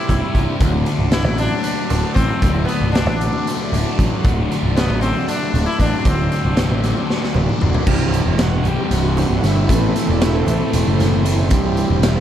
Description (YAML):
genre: psychedelic rock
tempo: 231 BPM (eighths)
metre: 7/8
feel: straight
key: unclear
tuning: A4 = 441 Hz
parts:
  - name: sitar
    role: melody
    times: 0.0-7.1 s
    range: B3 to E4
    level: -25 LUFS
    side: left 2 dB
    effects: analog delay
  - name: overdriven combo organ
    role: sustained chords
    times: 0.0-12.2 s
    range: E3 to D6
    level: -26 LUFS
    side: right 4 dB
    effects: lush chorus
  - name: thick fuzz guitar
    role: riff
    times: 0.0-12.2 s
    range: C2 to E4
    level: -22 LUFS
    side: left 2 dB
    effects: distortion, phaser, analog delay
  - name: fuzz picked electric bass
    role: bass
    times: 0.1-12.2 s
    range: C1 to A1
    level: -19 LUFS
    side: equal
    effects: overdrive
  - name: raw garage drum kit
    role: drums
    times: 0.1-12.2 s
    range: crash cymbal, hi-hat, kick drum, snare drum, toms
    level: -21 LUFS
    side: equal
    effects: none
  - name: congas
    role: percussion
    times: 0.1-12.0 s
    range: none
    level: -30 LUFS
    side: right 3 dB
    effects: none
  - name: swarming drone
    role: drone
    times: 9.4-12.2 s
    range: C2 to C3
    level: -31 LUFS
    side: right 2 dB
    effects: none
room: studio reverb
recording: echo-heavy mix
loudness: -15 LUFS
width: side -10 dB against mid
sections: 0.0-7.9 A section; 7.9-12.2 B section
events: drum fill 7.1-7.9; transistor combo organ solo 7.9-12.2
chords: 0.0 C; 0.6 D7; 7.9 C; 9.7 Am; 11.5 C